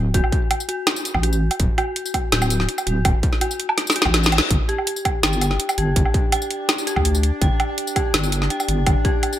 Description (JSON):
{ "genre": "half-time drum and bass", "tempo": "165 BPM", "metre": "4/4", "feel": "half-time", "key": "unclear", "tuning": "A4 = 440 Hz", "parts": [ { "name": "dark detuned synth bell", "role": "arpeggios", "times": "0.0-9.4 s", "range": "F#4 to G5", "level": "-27 LUFS", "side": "left 1 dB", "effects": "chorus, ping-pong delay" }, { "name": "deep soft wobble bass", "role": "bass", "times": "0.0-9.0 s", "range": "D1 to D2", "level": "-20 LUFS", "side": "equal", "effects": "chorus" }, { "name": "drum and bass drum kit", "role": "drums", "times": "0.1-9.4 s", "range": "hi-hat, snare drum, tambourine, woodblock", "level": "-21 LUFS", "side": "right 1 dB", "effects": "gated reverb" }, { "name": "electronic kick drum", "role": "drums", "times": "0.1-9.1 s", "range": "none", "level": "-21 LUFS", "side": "equal", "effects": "distortion" }, { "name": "reverse cymbal", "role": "sound effects", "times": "4.1-4.5 s", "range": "none", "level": "-29 LUFS", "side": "left 7 dB", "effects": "none" }, { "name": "metallic inharmonic drone", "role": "texture", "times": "5.6-9.4 s", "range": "D4", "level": "-31 LUFS", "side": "left 4 dB", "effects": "chorus, built-in reverb" } ], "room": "light reverb", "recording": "bright 1980s-style digital production", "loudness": "-17 LUFS", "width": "side -12 dB against mid", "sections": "0.0-9.4 A section", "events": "drum fill 3.8-4.5; reverse cymbal 4.1-4.5", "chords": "0.0 D; 4.5 G5", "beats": "| 0.14 0.51 0.87 1.23 | 1.60 1.96 2.32 2.69 | 3.05 3.41 3.78 4.14 | 4.50 4.87 5.23 5.60 | 5.96 6.32 6.69 7.05 | 7.41 7.78 8.14 8.51 | 8.87 9.23" }